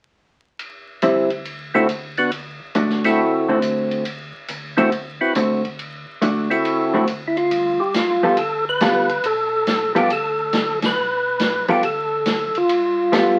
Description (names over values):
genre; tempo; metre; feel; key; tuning
soul jazz organ trio; 139 BPM; 4/4; swing 67% on 8ths; G major; A4 = 440 Hz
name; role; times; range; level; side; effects
swinging big-band drum kit; drums; 0.6-13.3 s; hi-hat, kick drum, ride cymbal, snare drum; -30 LUFS; equal; none
vintage hollow-body jazz guitar; accompaniment; 1.0-13.4 s; D3 to A4; -20 LUFS; equal; none
mellow tonewheel organ; bass; 1.0-13.4 s; B1 to G2; -42 LUFS; equal; slow rotary speaker
percussive tonewheel organ; melody; 1.7-13.4 s; B3 to B4; -21 LUFS; equal; slow rotary speaker, overdrive
room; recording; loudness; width
wet small room reverb, RT60 0.5 s; very old 78 rpm record, vinyl crackle; -20 LUFS; mono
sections
0.6-7.5 A section; 7.5-13.4 B section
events
band accent 10.7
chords
0.6 D9sus4; 1.5 D7; 7.5 G9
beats
| 0.59 1.02 1.45 1.89 | 2.32 2.75 3.18 3.62 | 4.05 4.48 4.91 5.35 | 5.78 6.21 6.64 7.08 | 7.51 7.94 8.37 8.80 | 9.23 9.67 10.10 10.53 | 10.96 11.39 11.83 12.26 | 12.69 13.12